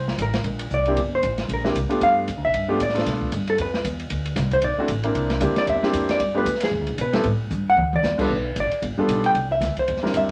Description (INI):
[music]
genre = jazz, small-group swing and bop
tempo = 229 BPM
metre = 4/4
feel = swing 58% on 8ths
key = G mixolydian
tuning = A4 = 440 Hz
[part]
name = hollow-body jazz guitar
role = melody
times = 0.0-10.3 s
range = Ab4 to G5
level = -25 LUFS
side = equal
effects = none
[part]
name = upright bass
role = bass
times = 0.0-10.3 s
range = G1 to B2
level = -29 LUFS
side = equal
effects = none
[part]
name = open jazz drum kit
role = drums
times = 0.1-10.3 s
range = crash cymbal, hi-hat, kick drum, ride cymbal, snare drum, toms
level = -32 LUFS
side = equal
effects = none
[part]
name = warm grand piano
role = accompaniment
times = 0.9-10.3 s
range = G3 to Bb4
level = -26 LUFS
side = equal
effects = none
[sound]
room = moderate studio reverb, RT60 0.6 s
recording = none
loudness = -22 LUFS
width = mono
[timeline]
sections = 0.0-8.3 A section; 8.3-10.3 A section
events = hollow-body jazz guitar solo 0.0-10.3; drum fill 7.5-8.0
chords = 0.0 C7(no3); 2.0 G7; 4.1 D7(no3); 5.2 C7; 6.2 G7; 6.7 E7; 7.3 Gsus2; 7.8 Dsus2; 8.3 G7; 9.3 C7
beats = 0.19 0.45 0.71 | 0.97 1.24 1.50 1.76 | 2.02 2.28 2.54 2.80 | 3.06 3.33 3.59 3.85 | 4.11 4.37 4.63 4.89 | 5.16 5.42 5.68 5.94 | 6.20 6.47 6.73 6.99 | 7.25 7.51 7.78 8.04 | 8.30 8.56 8.82 9.09 | 9.35 9.61 9.87 10.14